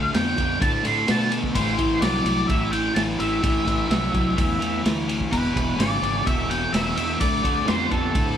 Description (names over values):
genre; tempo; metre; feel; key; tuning
blues rock power trio and southern rock; 127 BPM; 4/4; straight; A minor; A4 = 436 Hz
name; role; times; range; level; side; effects
octave-fuzz lead guitar; melody; 0.0-8.4 s; A4 to C6; -26 LUFS; equal; distortion
crunchy overdriven guitar; riff; 0.0-8.4 s; E2 to B3; -25 LUFS; equal; none
fuzz fingered electric bass; bass; 0.0-8.3 s; E1 to B2; -28 LUFS; equal; overdrive
vintage drum kit; drums; 0.1-8.3 s; kick drum, ride cymbal, snare drum; -25 LUFS; equal; none
room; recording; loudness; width
wet studio reverb, RT60 0.8 s; band playing live in one room; -20 LUFS; side -9 dB against mid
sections
0.0-8.4 A section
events
none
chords
0.0 Dm; 1.6 Am; 5.3 E7; 7.2 Dm